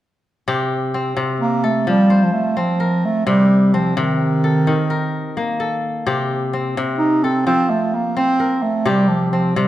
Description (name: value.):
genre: west african traditional.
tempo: 86 BPM (dotted quarters).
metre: 12/8.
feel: straight.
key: C dorian.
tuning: A4 = 440 Hz.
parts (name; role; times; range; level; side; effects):
kora; arpeggios; 0.5-9.7 s; C3 to C5; -20 LUFS; left 2 dB; none.
warm bass clarinet; melody; 1.4-9.7 s; Eb3 to Eb4; -16 LUFS; right 1 dB; none.
room: wet recital hall reverb, RT60 1.5 s.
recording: none.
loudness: -15 LUFS.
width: side -13 dB against mid.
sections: 0.5-9.7 A section.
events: none.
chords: 0.5 C5; 1.9 F; 3.3 Cm; 4.7 Eb5; 6.1 C5; 7.5 F; 8.9 C5.